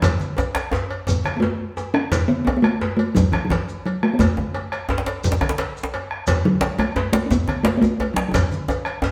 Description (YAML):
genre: west african traditional, West African drum ensemble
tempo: 116 BPM (dotted quarters)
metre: 12/8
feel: straight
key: A major pentatonic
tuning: A4 = 440 Hz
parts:
  - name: talking drum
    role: melody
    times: 0.0-9.1 s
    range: E3 to C#4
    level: -23 LUFS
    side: equal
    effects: none
  - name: bombo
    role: percussion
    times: 0.0-9.1 s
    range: none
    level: -28 LUFS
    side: equal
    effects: none
  - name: congas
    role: percussion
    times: 0.0-9.1 s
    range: none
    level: -32 LUFS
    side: equal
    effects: none
  - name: cowbell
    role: percussion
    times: 0.0-9.0 s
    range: none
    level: -33 LUFS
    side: equal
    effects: none
  - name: djembe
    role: percussion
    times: 0.0-9.1 s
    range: none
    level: -30 LUFS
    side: equal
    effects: none
  - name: shekere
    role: percussion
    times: 0.0-9.1 s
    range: none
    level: -34 LUFS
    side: equal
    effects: none
  - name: djembe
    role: percussion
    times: 0.4-9.1 s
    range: none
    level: -28 LUFS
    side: equal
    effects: none
room: wet stone room reverb, RT60 1.2 s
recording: band playing live in one room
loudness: -21 LUFS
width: mono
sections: 0.0-9.1 A section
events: drum fill 8.3-9.1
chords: none